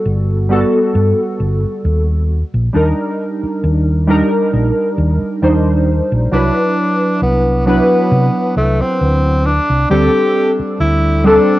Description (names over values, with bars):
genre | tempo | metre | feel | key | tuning
vaporwave | 67 BPM | 4/4 | swing 54% on 16ths | unclear | A4 = 440 Hz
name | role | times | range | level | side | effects
warbly lo-fi synth keys | accompaniment | 0.0-11.6 s | F#3 to C5 | -14 LUFS | equal | ensemble chorus, cassette tape, tape echo
hollow-body short-scale fingered electric bass | bass | 0.1-11.4 s | G1 to C3 | -15 LUFS | equal | tube saturation
clear tenor saxophone | melody | 6.3-11.6 s | A3 to G4 | -16 LUFS | equal | cassette tape, tape echo
room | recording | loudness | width
light reverb | home recording on cassette | -12 LUFS | side -16 dB against mid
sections
0.0-11.6 A section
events
none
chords
0.0 Gmaj9; 2.3 Ebmaj7; 6.3 Cmaj9#11; 9.5 D7sus4